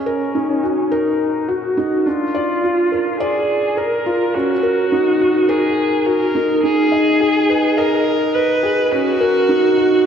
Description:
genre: electronica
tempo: 105 BPM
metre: 4/4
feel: straight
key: Eb minor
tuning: A4 = 440 Hz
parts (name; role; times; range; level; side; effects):
- clear viola; melody; 0.0-10.1 s; Db4 to Cb5; -18 LUFS; equal; low-pass filter, analog delay
- felt-muted upright piano; riff; 0.1-10.1 s; Db4 to Eb5; -17 LUFS; equal; wide subtle chorus, analog delay
room: wet lush hall reverb, RT60 2.5 s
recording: dreamy mix soaked in reverb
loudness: -14 LUFS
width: side -8 dB against mid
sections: 0.0-10.1 A section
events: build-up 0.0-10.1; filter sweep on viola 0.0-10.1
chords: 0.0 Ebm7; 2.1 Bb; 4.3 Ebm7; 6.6 Abm; 8.9 Ebm7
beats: 0.34 0.92 1.49 | 2.06 2.63 3.20 3.77 | 4.34 4.92 5.49 6.06 | 6.63 7.20 7.77 8.35 | 8.92 9.49 10.06

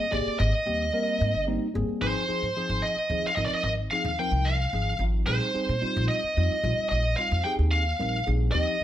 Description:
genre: electric jazz fusion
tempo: 74 BPM (dotted quarters)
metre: 6/8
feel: straight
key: Ab major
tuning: A4 = 440 Hz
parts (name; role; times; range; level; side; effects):
- bluesy overdriven lead guitar; melody; 0.0-8.8 s; C5 to G5; -27 LUFS; right 1 dB; distortion, plate reverb
- tine electric piano; accompaniment; 0.0-8.8 s; F3 to Bb4; -32 LUFS; left 2 dB; phaser
- upright bass; bass; 0.1-8.8 s; G1 to Bb2; -27 LUFS; equal; none
room: light reverb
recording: none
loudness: -24 LUFS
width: side -12 dB against mid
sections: 0.0-2.0 A section; 2.0-8.8 B section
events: none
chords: 0.0 Abmaj9; 2.0 Ab6; 5.3 Bb13sus4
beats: | 0.39 1.20 | 2.02 2.83 | 3.64 4.46 | 5.27 6.09 | 6.90 7.72 | 8.53

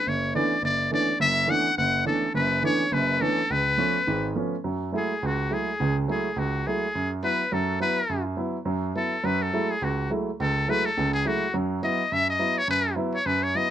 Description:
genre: jazz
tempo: 209 BPM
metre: 4/4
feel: swing 59% on 8ths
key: B dorian, F# dorian from 4.6 s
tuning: A4 = 444 Hz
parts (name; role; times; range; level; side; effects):
- trumpet with metal mute; melody; 0.0-13.7 s; F#4 to F#5; -25 LUFS; left 2 dB; none
- warm baby grand piano; accompaniment; 0.1-13.7 s; F#1 to E4; -26 LUFS; right 2 dB; none
room: light reverb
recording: close, detailed microphones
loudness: -23 LUFS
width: side -10 dB against mid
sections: 0.0-4.6 A section; 4.6-13.7 B section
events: muted trumpet solo 4.6-13.7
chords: 0.0 Bm11; 3.5 C#7b13; 4.6 F#m9; 6.9 Bsus4/F#; 9.2 F#m9; 11.5 Bsus4/F#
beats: | 0.06 0.34 0.63 0.92 | 1.20 1.49 1.78 2.06 | 2.35 2.64 2.92 3.21 | 3.50 3.79 4.07 4.36 | 4.65 4.93 5.22 5.51 | 5.79 6.08 6.37 6.66 | 6.94 7.23 7.52 7.81 | 8.09 8.38 8.67 8.95 | 9.24 9.53 9.81 10.10 | 10.39 10.68 10.96 11.25 | 11.54 11.82 12.11 12.40 | 12.69 12.97 13.26 13.55

